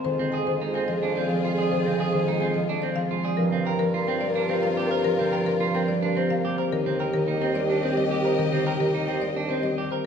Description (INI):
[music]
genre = classical, minimalist pattern music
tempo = 108 BPM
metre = 3/4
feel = straight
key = F dorian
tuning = A4 = 438 Hz
[part]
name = buzzing marimba with medium hard mallets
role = melody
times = 0.0-10.1 s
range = Bb4 to Ab5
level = -30 LUFS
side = left 8 dB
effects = none
[part]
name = concert harp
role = accompaniment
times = 0.0-10.1 s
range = D3 to C4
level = -27 LUFS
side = right 1 dB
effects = none
[part]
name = rich studio string section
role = sustained chords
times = 0.0-9.9 s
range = F4 to Eb5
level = -34 LUFS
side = left 4 dB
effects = none
[part]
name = warm French horn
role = second line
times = 0.1-9.8 s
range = G4 to Bb4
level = -30 LUFS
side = right 2 dB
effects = none
[part]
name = mellow bassoon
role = bass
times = 0.1-9.9 s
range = Eb2 to G2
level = -31 LUFS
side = equal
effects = none
[part]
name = clean electric guitar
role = arpeggios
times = 0.2-10.1 s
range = C4 to Bb4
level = -30 LUFS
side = right 4 dB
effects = none
[sound]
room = wet scoring stage reverb, RT60 2.1 s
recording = none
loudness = -22 LUFS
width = side -7 dB against mid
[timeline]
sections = 0.1-10.1 A section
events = none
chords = 0.1 Fm7; 3.4 Gm7; 6.7 Ebmaj7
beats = | 0.05 0.61 1.16 | 1.72 2.27 2.83 | 3.38 3.94 4.50 | 5.05 5.61 6.16 | 6.72 7.27 7.83 | 8.38 8.94 9.50 | 10.05